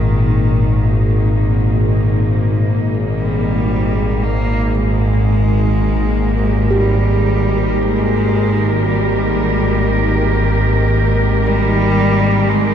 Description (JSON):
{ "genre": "dark ambient drone", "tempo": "58 BPM", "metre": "4/4", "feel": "straight", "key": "unclear", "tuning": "A4 = 442 Hz", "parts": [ { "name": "rich cello", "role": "melody", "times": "0.0-12.7 s", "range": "D#3 to A#3", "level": "-22 LUFS", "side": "equal", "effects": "ping-pong delay" }, { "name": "dark symphonic cello section", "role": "sustained chords", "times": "0.0-12.7 s", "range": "G#2 to A#4", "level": "-19 LUFS", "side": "equal", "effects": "none" }, { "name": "gamelan-type bossed gongs", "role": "arpeggios", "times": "0.0-12.7 s", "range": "A#2 to G4", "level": "-21 LUFS", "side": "left 1 dB", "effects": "ping-pong delay" }, { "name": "analog drone", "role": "drone", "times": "0.0-12.7 s", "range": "G#1", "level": "-16 LUFS", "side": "equal", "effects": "lush chorus" }, { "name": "bronze singing bowl", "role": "texture", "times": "0.0-12.7 s", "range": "none", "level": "barely audible", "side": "none", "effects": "none" } ], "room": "wet cathedral reverb, RT60 6.7 s", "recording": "in a vast, echoing space, cassette tape", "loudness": "-13 LUFS", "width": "side -9 dB against mid", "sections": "0.0-12.7 A section", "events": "fade-in on cello 0.0-12.7", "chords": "0.0 G#sus2", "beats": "0.60 1.63 | 2.67 3.70 4.73 5.77 | 6.80 7.84 8.87 9.91 | 10.94 11.97" }